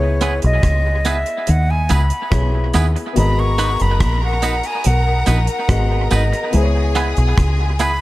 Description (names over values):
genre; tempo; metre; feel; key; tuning
lovers rock reggae; 71 BPM; 4/4; straight; unclear; A4 = 440 Hz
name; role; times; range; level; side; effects
breathy concert flute; melody; 0.0-8.0 s; C#5 to C#6; -23 LUFS; equal; tape echo
clear grand piano; accompaniment; 0.0-8.0 s; B3 to D#5; -26 LUFS; left 4 dB; none
deep dub fingered electric bass; bass; 0.0-8.0 s; F#1 to D#2; -16 LUFS; equal; none
twangy electric guitar; stabs; 0.2-7.9 s; B3 to B4; -24 LUFS; right 4 dB; dub echo
deep reggae drum kit; drums; 0.2-8.0 s; hi-hat, kick drum, rim click; -22 LUFS; equal; gated reverb, dub echo
tambourine and woodblock; percussion; 0.2-8.0 s; none; -35 LUFS; right 4 dB; dub echo
bright studio violin section; second line; 3.2-8.0 s; G#4 to A#5; -26 LUFS; left 3 dB; none
room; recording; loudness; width
light reverb, studio reverb; none; -14 LUFS; side -17 dB against mid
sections
0.0-8.0 A section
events
flute solo 0.0-8.0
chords
0.0 C#m7; 3.2 G#m7; 6.5 C#m7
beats
0.64 1.48 2.32 | 3.16 4.01 4.85 5.69 | 6.54 7.38